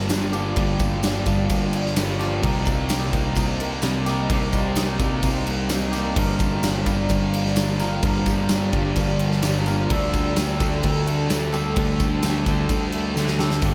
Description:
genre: rock, shoegaze and dream pop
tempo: 129 BPM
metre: 4/4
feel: straight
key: G minor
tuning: A4 = 439 Hz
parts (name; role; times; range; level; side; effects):
- picked twelve-string acoustic guitar; arpeggios; 0.0-13.7 s; F3 to G4; -33 LUFS; equal; analog chorus, diffuse ambient delay
- clean electric guitar; riff; 0.0-13.7 s; G2 to Bb4; -31 LUFS; equal; reverse reverb
- thick fuzz guitar; riff; 0.0-13.7 s; G2 to D4; -28 LUFS; equal; distortion, analog chorus
- picked electric bass; bass; 0.0-13.7 s; G1 to D2; -28 LUFS; equal; none
- huge arena drum kit; drums; 0.1-13.7 s; crash cymbal, hi-hat, kick drum, snare drum; -27 LUFS; equal; none
- tambourine; percussion; 0.1-13.7 s; none; -42 LUFS; equal; none
room: moderate huge ambient reverb, RT60 7.1 s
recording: dreamy mix soaked in reverb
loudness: -22 LUFS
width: mono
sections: 0.0-13.6 A section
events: drum fill 13.2-13.6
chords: 0.0 Gm7; 2.4 Cm7; 6.2 Gm7; 9.9 D7sus4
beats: 0.10 | 0.56 1.03 1.50 1.96 | 2.43 2.90 3.37 3.83 | 4.30 4.76 5.23 5.70 | 6.17 6.63 7.10 7.57 | 8.03 8.50 8.96 9.43 | 9.90 10.36 10.83 11.30 | 11.76 12.23 12.70 13.16 | 13.63

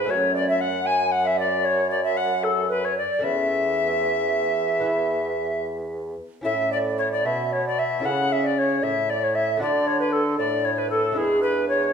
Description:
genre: classical, baroque-style sonata movement with continuo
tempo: 76 BPM (dotted quarters)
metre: 12/8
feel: straight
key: A major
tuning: A4 = 439 Hz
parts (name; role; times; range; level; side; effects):
- bright tenor recorder; melody; 0.0-11.9 s; G#4 to G#5; -24 LUFS; left 5 dB; none
- bright baroque flute; second line; 0.0-11.9 s; G#4 to G#5; -26 LUFS; right 6 dB; none
- lute; accompaniment; 0.0-11.9 s; E2 to A4; -31 LUFS; equal; none
- warm bassoon; bass; 0.0-11.9 s; E2 to D3; -28 LUFS; right 2 dB; none
room: wet recital hall reverb, RT60 1.4 s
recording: minimal, uncompressed stereo recording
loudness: -20 LUFS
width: side -6 dB against mid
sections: 0.0-11.9 A section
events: none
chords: 0.1 F#m; 3.2 A/E; 4.8 E; 6.5 A; 8.0 A/C#; 9.6 D; 11.2 E7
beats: | 0.09 0.86 1.64 2.43 | 3.23 4.05 4.85 5.65 | 6.45 7.25 8.04 8.83 | 9.61 10.39 11.17

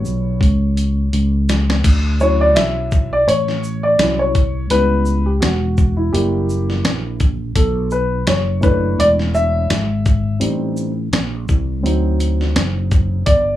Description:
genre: hip hop, jazz-hop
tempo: 84 BPM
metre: 4/4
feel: swing 57% on 16ths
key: D major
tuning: A4 = 440 Hz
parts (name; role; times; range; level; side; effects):
- dark upright piano; accompaniment; 0.0-13.6 s; F#3 to E5; -18 LUFS; equal; none
- sustaining fretless electric bass; bass; 0.0-13.6 s; E1 to D2; -18 LUFS; equal; wide subtle chorus
- dusty soul sampler-style drum kit; drums; 0.1-13.5 s; crash cymbal, hi-hat, kick drum, shaker, snare drum; -18 LUFS; equal; none
room: little or no reverb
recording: small room ambience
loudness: -14 LUFS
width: side -13 dB against mid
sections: 0.0-1.8 A section; 1.8-13.6 B section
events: drum fill 0.0-1.8; upright piano solo 0.0-1.8, 1.8-13.6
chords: 0.0 A13 (rootless); 1.8 Dmaj9; 4.7 C#m7b5; 6.1 F#7b9; 7.6 Bm11; 10.4 Am7b5; 11.8 D7b9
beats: 0.41 1.13 | 1.84 2.55 3.27 3.98 | 4.70 5.41 6.13 6.84 | 7.55 8.27 8.98 9.70 | 10.41 11.13 11.84 12.55 | 13.27

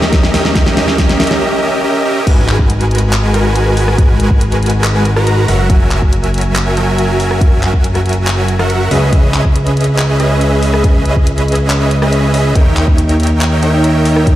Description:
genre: future bass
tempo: 140 BPM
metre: 4/4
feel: half-time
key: G# minor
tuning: A4 = 440 Hz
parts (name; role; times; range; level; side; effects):
- supersaw chords; riff; 0.0-14.4 s; F#3 to A#5; -14 LUFS; right 1 dB; sidechain pumping, tape echo
- fat analog bass; bass; 0.0-14.4 s; F#1 to D#2; -14 LUFS; equal; sidechain pumping
- pop drum kit; drums; 0.0-14.4 s; crash cymbal, handclaps, hi-hat, rim click, snare drum; -19 LUFS; equal; none
- electronic kick drum; drums; 0.1-14.4 s; none; -11 LUFS; equal; none
room: moderate lush hall reverb, RT60 1.9 s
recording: played on a big sound system in a bare room, large studio reverb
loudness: -10 LUFS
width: side -14 dB against mid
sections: 0.0-2.3 A section; 2.3-14.4 B section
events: build-up 0.0-2.3; drum fill 0.0-1.4; break 1.4-2.3; drop 2.3-14.4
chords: 0.0 D#7b9; 2.3 G#m7; 5.5 F#7; 8.9 C#m9; 12.6 D#7b9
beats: 0.13 | 0.56 0.98 1.41 1.84 | 2.27 2.70 3.13 3.56 | 3.98 4.41 4.84 5.27 | 5.70 6.13 6.55 6.98 | 7.41 7.84 8.27 8.70 | 9.13 9.55 9.98 10.41 | 10.84 11.27 11.70 12.13 | 12.55 12.98 13.41 13.84 | 14.27

